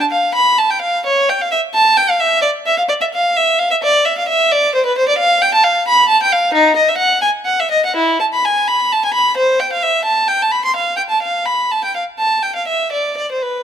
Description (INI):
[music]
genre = classical, baroque-style suite movement for unaccompanied violin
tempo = 86 BPM (dotted quarters)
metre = 12/8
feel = uneven beats, rubato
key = A minor from 5.2 s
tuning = A4 = 439 Hz
[part]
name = rich violin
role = solo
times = 0.0-13.6 s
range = D#4 to C6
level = -12 LUFS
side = equal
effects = none
[sound]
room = light reverb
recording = close, detailed microphones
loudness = -12 LUFS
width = side -8 dB against mid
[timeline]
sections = 0.0-13.6 A section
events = none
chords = none